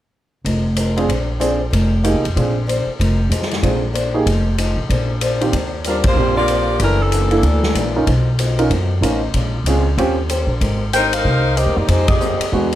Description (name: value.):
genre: jazz, big band swing.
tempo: 189 BPM.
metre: 4/4.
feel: swing 62% on 8ths.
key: Eb major.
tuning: A4 = 441 Hz.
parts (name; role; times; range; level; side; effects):
picked old ladder-braced acoustic guitar; accompaniment; 0.4-12.7 s; Gb2 to C5; -25 LUFS; left 3 dB; none.
upright bass; bass; 0.4-12.8 s; F1 to F#2; -18 LUFS; equal; none.
swinging big-band drum kit; drums; 0.5-12.8 s; hi-hat, kick drum, ride cymbal, snare drum; -22 LUFS; left 1 dB; none.
warm baby grand piano; accompaniment; 1.0-10.2, 12.5-12.7 s; Eb3 to Bb4; -20 LUFS; right 3 dB; none.
clear saxophone section; melody; 5.9-8.0, 10.9-12.5 s; Fb3 to G5; -18 LUFS; left 1 dB; none.
room: light reverb.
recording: none.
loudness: -15 LUFS.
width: side -13 dB against mid.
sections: 0.4-5.5 A section; 5.5-12.8 B section.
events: band accent 6.0, 12.0.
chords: 0.4 Fm7; 1.1 Bb9; 1.7 Fm11; 2.4 Bb9; 3.0 Fm7; 3.6 Bb9; 4.3 Fm7; 4.9 Bb9; 5.5 Ebmaj13; 6.8 Gb7alt; 8.1 Bmaj9#11; 9.3 Bbm7; 10.0 Eb13; 10.6 Abmaj9; 11.9 Fm11.